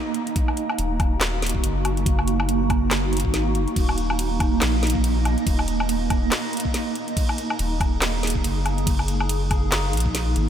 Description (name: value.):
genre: deep dubstep.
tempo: 141 BPM.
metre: 4/4.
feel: swing 58% on 16ths, half-time.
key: Eb minor.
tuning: A4 = 442 Hz.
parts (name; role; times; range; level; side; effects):
granular cloud pad; sustained chords; 0.0-10.5 s; Bb3 to Eb5; -25 LUFS; right 2 dB; built-in reverb, lush chorus.
garage drum kit; drums; 0.1-10.5 s; crash cymbal, handclaps, hi-hat, snare drum, woodblock; -27 LUFS; equal; none.
electronic kick drum; drums; 0.4-10.1 s; none; -23 LUFS; equal; none.
soft dub sub bass; bass; 0.8-10.5 s; Eb1 to Bb1; -24 LUFS; equal; none.
room: moderate cathedral reverb, RT60 5.2 s.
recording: dreamy mix soaked in reverb.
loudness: -20 LUFS.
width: side -9 dB against mid.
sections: 0.0-10.5 A section.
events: none.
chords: 0.0 Eb5.